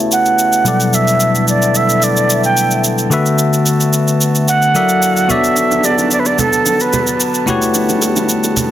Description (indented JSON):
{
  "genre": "amapiano",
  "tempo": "110 BPM",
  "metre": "4/4",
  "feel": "straight",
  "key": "B minor",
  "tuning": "A4 = 440 Hz",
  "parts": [
    { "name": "bell-like tine electric piano", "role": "accompaniment", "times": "0.0-8.7 s", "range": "B2 to E5", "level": "-15 LUFS", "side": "left 3 dB", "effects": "low-pass filter" },
    { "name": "pedal harmonium", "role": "sustained chords", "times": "0.0-8.7 s", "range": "C#3 to A5", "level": "-20 LUFS", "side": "right 1 dB", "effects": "low-pass filter" },
    { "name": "breathy bright concert flute", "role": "melody", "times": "0.1-7.2 s", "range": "A4 to G5", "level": "-15 LUFS", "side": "right 2 dB", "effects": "low-pass filter, tape echo" },
    { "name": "shaker", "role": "drums", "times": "0.1-8.7 s", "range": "none", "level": "-19 LUFS", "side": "right 1 dB", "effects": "none" },
    { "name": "congas and bongos", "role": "percussion", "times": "5.3-8.7 s", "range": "none", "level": "-21 LUFS", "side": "right 4 dB", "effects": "none" }
  ],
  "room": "light reverb, small room ambience",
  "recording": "dense, heavily limited modern master",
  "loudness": "-11 LUFS",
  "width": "side -12 dB against mid",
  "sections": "0.0-8.7 A section",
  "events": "filter sweep 0.0-8.7",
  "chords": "0.0 A13; 0.7 Gmaj9/B; 3.1 D6; 4.8 F#7alt; 5.3 Bm9; 7.5 A13",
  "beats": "0.39 | 0.93 1.48 2.02 2.57 | 3.12 3.66 4.21 4.75 | 5.30 5.84 6.39 6.93 | 7.48 8.03 8.57"
}